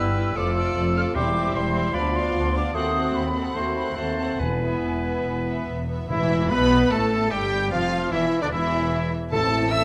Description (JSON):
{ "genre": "classical, dramatic, fast romantic movement for symphony orchestra", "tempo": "149 BPM", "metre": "4/4", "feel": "rubato", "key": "A minor", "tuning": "A4 = 442 Hz", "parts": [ { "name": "warm symphonic violin section", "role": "melody", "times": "0.0-9.8 s", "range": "B4 to E6", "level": "-34 LUFS", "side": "equal", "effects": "none" }, { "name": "bright oboe", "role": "second line", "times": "0.0-9.8 s", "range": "D4 to E5", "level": "-34 LUFS", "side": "equal", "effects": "none" }, { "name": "dark symphonic violin section", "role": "second line", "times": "0.0-9.8 s", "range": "C4 to B4", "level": "-39 LUFS", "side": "equal", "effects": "none" }, { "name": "small flute group", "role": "second line", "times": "0.0-9.8 s", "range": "D5 to F6", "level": "-34 LUFS", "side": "equal", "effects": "none" }, { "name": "warm clarinet", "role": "second line", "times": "0.0-9.8 s", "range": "D4 to E5", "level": "-34 LUFS", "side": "equal", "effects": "none" }, { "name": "dark bassoon", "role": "accompaniment", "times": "0.0-5.9 s", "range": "F3 to B3", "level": "-33 LUFS", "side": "equal", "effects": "none" }, { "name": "warm symphonic viola section", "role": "accompaniment", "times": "0.0-9.8 s", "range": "D3 to F4", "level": "-34 LUFS", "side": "equal", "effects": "none" }, { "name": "warm French horn section", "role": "sustained chords", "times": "0.0-9.8 s", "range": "D3 to F#4", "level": "-33 LUFS", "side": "equal", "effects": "none" }, { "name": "warm chamber cello section", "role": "bass", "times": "0.0-9.8 s", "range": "D2 to B2", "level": "-32 LUFS", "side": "equal", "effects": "none" }, { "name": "warm symphonic double bass section", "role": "bass", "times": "0.0-9.8 s", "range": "E1 to D#2", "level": "-33 LUFS", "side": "equal", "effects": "none" }, { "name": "timpani", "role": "percussion", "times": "1.2-1.7, 4.4-6.7, 9.3-9.8 s", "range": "E2 to A2", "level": "-35 LUFS", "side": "equal", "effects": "none" }, { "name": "warm trombone section", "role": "sustained chords", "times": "6.1-9.8 s", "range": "D3 to B3", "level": "-32 LUFS", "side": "equal", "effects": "none" }, { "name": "clear trumpet", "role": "stabs", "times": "6.1-9.8 s", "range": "D4 to B4", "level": "-32 LUFS", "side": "equal", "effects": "none" } ], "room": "moderate scoring stage reverb, RT60 1.7 s", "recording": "none", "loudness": "-23 LUFS", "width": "mono", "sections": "0.0-6.1 A section; 6.1-9.8 B section", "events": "none", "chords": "0.4 Dm/F; 1.2 C/E; 1.9 Bdim/D; 2.7 D#dim7; 4.4 E; 6.1 A5/E; 7.7 Dmadd9/E; 9.3 Am", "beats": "0.36 0.76 | 1.15 1.55 1.95 2.35 | 2.75 3.15 3.55 3.97 | 4.40 4.83 5.25 5.68 | 6.10 6.51 6.91 7.31 | 7.71 8.12 8.52 8.93 | 9.32 9.72" }